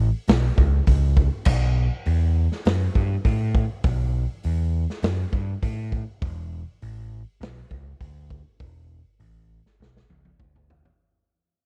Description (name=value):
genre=stoner and doom metal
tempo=101 BPM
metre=4/4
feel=straight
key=unclear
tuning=A4 = 439 Hz
part: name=overdriven picked electric bass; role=bass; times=0.0-10.8 s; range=E1 to A2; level=-25 LUFS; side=equal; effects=none
part: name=raw garage drum kit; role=drums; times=0.3-11.0 s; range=crash cymbal, hi-hat, kick drum, snare drum, toms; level=-25 LUFS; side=equal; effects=none
room=little or no reverb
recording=dry, close 1970s-style studio recording, faint mains hum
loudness=-23 LUFS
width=mono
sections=0.0-11.0 A section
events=fade-out 0.0-11.0; drum fill 9.8-11.0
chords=none